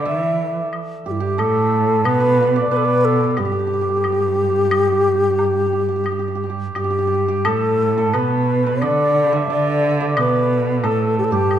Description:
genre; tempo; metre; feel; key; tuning
chinese traditional, Chinese chamber ensemble; 90 BPM; 4/4; rubato; G gong mode; A4 = 440 Hz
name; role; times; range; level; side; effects
low xiao; melody; 0.0-11.6 s; E4 to E5; -19 LUFS; left 2 dB; none
dark cello; second line; 0.0-11.6 s; G2 to E3; -21 LUFS; right 4 dB; none
hammered dulcimer; second line; 0.0-11.6 s; G4 to E5; -23 LUFS; right 2 dB; none
woodblock; percussion; 0.7-11.6 s; none; -28 LUFS; left 4 dB; none
room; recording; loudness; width
moderate recital hall reverb, RT60 1.6 s; dark, warm production; -16 LUFS; side -10 dB against mid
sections
0.0-7.5 A section; 7.5-11.6 B section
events
none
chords
none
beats
0.06 0.73 1.39 | 2.06 2.71 3.37 4.04 | 4.72 5.39 6.07 6.76 | 7.46 8.15 8.83 9.50 | 10.17 10.84 11.51

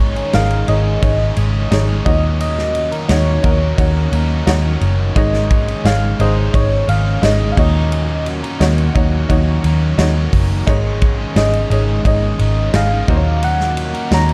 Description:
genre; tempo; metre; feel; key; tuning
piano-driven pop; 87 BPM; 4/4; straight; unclear; A4 = 440 Hz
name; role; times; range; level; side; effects
soft struck synth lead; melody; 0.0-14.3 s; Db5 to Bb5; -24 LUFS; equal; chorus
bright upright piano; accompaniment; 0.0-14.3 s; Ab2 to Eb5; -26 LUFS; equal; none
sweeping resonant pad; sustained chords; 0.2-14.3 s; Eb3 to Gb4; -30 LUFS; equal; chorus
overdriven electric guitar; riff; 0.0-14.3 s; Ab2 to Bb4; -28 LUFS; equal; none
vintage muted picked electric bass; bass; 0.0-14.3 s; Gb1 to Eb2; -18 LUFS; equal; none
modern studio drum kit; drums; 0.2-14.3 s; crash cymbal, hi-hat, kick drum, ride cymbal, snare drum; -22 LUFS; equal; none
room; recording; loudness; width
little or no reverb; dark, warm production; -15 LUFS; mono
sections
0.0-14.3 A section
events
none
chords
0.0 Absus4; 2.1 Ebm7; 5.2 Absus4; 7.6 Ebm7; 10.7 Absus4; 13.1 Ebm7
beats
0.34 1.03 1.72 | 2.41 3.10 3.79 4.47 | 5.16 5.85 6.54 7.23 | 7.92 8.61 9.30 9.98 | 10.67 11.36 12.05 12.74 | 13.43 14.12

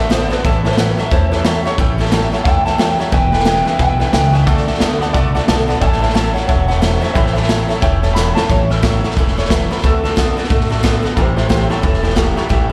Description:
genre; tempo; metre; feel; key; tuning
rockabilly; 179 BPM; 4/4; swing 61% on 8ths; A mixolydian; A4 = 443 Hz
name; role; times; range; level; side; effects
electric guitar through a small old amp; melody; 0.0-12.7 s; E4 to B5; -23 LUFS; equal; subtle chorus, slapback echo, tape echo
honky-tonk upright piano; accompaniment; 0.0-8.4 s; B4 to B5; -26 LUFS; equal; slapback echo
picked steel-string acoustic guitar; accompaniment; 0.0-12.7 s; A2 to B4; -25 LUFS; equal; slapback echo
twangy electric guitar; riff; 0.0-12.7 s; E2 to B3; -25 LUFS; equal; slapback echo
upright bass; bass; 0.0-12.7 s; E1 to E2; -21 LUFS; equal; none
raw garage drum kit; drums; 0.1-12.6 s; hi-hat, kick drum, snare drum; -19 LUFS; equal; none
room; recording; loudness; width
light reverb; live gig heard through the venue's PA, recital hall reverb; -15 LUFS; mono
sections
0.0-8.5 A section; 8.5-12.7 B section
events
clean electric guitar solo 0.0-8.5; drum fill 8.2-8.5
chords
0.4 A7; 3.1 E7; 4.5 D7; 5.8 A7; 9.8 D7; 11.2 A7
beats
0.11 | 0.45 0.78 1.11 1.45 | 1.79 2.12 2.46 2.79 | 3.13 3.46 3.80 4.14 | 4.47 4.81 5.14 5.48 | 5.82 6.15 6.49 6.82 | 7.16 7.49 7.83 8.16 | 8.50 8.83 9.17 9.50 | 9.84 10.17 10.51 10.84 | 11.17 11.51 11.84 12.17 | 12.51

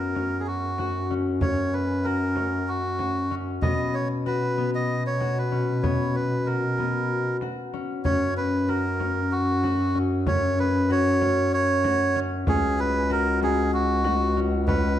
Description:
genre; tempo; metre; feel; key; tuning
contemporary instrumental, chamber music in an uneven meter; 190 BPM (eighths); 7/8; straight; unclear; A4 = 440 Hz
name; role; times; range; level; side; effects
melodica; melody; 0.0-15.0 s; F#4 to D#5; -26 LUFS; right 2 dB; none
concert harp; arpeggios; 0.0-15.0 s; B3 to F#4; -28 LUFS; left 5 dB; none
dark bass clarinet; bass; 0.0-15.0 s; C#2 to B2; -26 LUFS; equal; none
frame drum; percussion; 0.2-15.0 s; none; -30 LUFS; equal; none
room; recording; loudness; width
wet recital hall reverb, RT60 1.5 s; dark, warm production; -22 LUFS; side -11 dB against mid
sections
0.0-15.0 A section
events
none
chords
0.0 F#; 3.6 B5; 8.0 F#5; 12.5 C#7sus4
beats
0.16 0.47 0.79 1.10 | 1.42 1.74 2.05 2.37 2.68 3.00 3.31 | 3.63 3.94 4.26 4.58 4.89 5.21 5.52 | 5.84 6.16 6.47 6.79 7.10 7.42 7.73 | 8.05 8.36 8.68 8.99 9.31 9.63 9.94 | 10.26 10.57 10.89 11.20 11.52 11.83 12.15 | 12.46 12.78 13.10 13.41 13.72 14.04 14.36 | 14.67 14.98

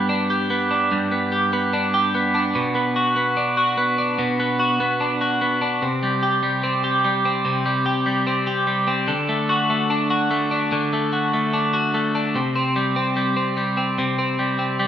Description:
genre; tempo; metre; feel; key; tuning
indie pop; 147 BPM; 4/4; straight; unclear; A4 = 439 Hz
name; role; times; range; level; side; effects
twelve-string electric guitar; solo; 0.0-14.9 s; G2 to G4; -18 LUFS; equal; spring reverb, slapback echo
room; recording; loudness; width
light reverb, digital ambience; rough home demo mix, small room ambience; -18 LUFS; side -10 dB against mid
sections
0.0-12.4 A section; 12.4-14.9 B section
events
none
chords
0.0 G; 2.6 Bm; 5.8 C5; 9.1 D; 12.4 C5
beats
0.10 0.51 | 0.92 1.33 1.74 2.14 | 2.55 2.96 3.37 3.78 | 4.19 4.60 5.00 5.41 | 5.82 6.23 6.64 7.05 | 7.46 7.86 8.27 8.68 | 9.09 9.50 9.90 10.31 | 10.72 11.13 11.54 11.94 | 12.35 12.76 13.17 13.57 | 13.98 14.39 14.79

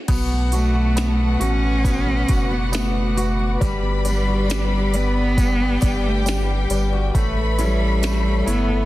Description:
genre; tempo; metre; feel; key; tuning
pop ballad; 68 BPM; 4/4; straight; B minor; A4 = 440 Hz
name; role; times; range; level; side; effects
warm studio violin section; second line; 0.1-8.9 s; F#4 to B5; -29 LUFS; left 3 dB; none
clear baby grand piano; accompaniment; 0.1-8.9 s; G3 to F#4; -28 LUFS; left 1 dB; none
warm analog pad; sustained chords; 0.1-8.9 s; A4 to D6; -33 LUFS; left 3 dB; chorus
fingerpicked steel-string acoustic guitar; arpeggios; 0.1-8.9 s; A2 to A4; -29 LUFS; left 4 dB; none
saturated sub bass; bass; 0.1-8.9 s; F#1 to B1; -21 LUFS; equal; none
minimal click drum kit; drums; 0.1-8.7 s; crash cymbal, hi-hat, kick drum, snare drum; -23 LUFS; equal; soft clipping on snare
tambourine; percussion; 0.1-8.7 s; none; -38 LUFS; right 4 dB; none
rich cello; melody; 0.5-8.9 s; G3 to C#4; -24 LUFS; equal; none
room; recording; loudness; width
small room ambience; dense, heavily limited modern master; -17 LUFS; side -16 dB against mid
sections
0.1-8.9 A section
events
none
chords
0.1 Bm7; 3.6 Gmaj7; 7.1 A7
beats
| 0.09 0.97 1.85 2.73 | 3.62 4.50 5.38 6.26 | 7.15 8.03

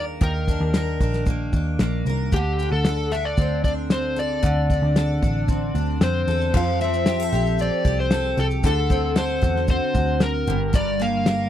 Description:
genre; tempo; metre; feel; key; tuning
acoustic pop; 114 BPM; 4/4; straight; unclear; A4 = 440 Hz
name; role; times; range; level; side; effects
overdriven slide guitar; melody; 0.0-11.5 s; G4 to F5; -25 LUFS; left 3 dB; none
picked steel-string acoustic guitar; accompaniment; 0.0-11.5 s; G2 to Bb4; -25 LUFS; equal; double-tracked left and right
vintage muted picked electric bass; bass; 0.0-11.5 s; G1 to F2; -24 LUFS; equal; none
loose indie drum kit; drums; 0.2-11.4 s; crash cymbal, kick drum, shaker, snare drum; -22 LUFS; equal; none
room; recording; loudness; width
little or no reverb; dry, close 1970s-style studio recording; -19 LUFS; side -11 dB against mid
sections
0.0-6.5 A section; 6.5-11.5 B section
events
none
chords
0.0 Eb5; 2.3 D7(no3); 6.5 Fadd9; 8.6 D7; 10.5 Gm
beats
| 0.21 0.74 1.27 1.80 | 2.33 2.85 3.38 3.91 | 4.43 4.96 5.49 6.01 | 6.54 7.07 7.59 8.12 | 8.64 9.17 9.69 10.22 | 10.74 11.27

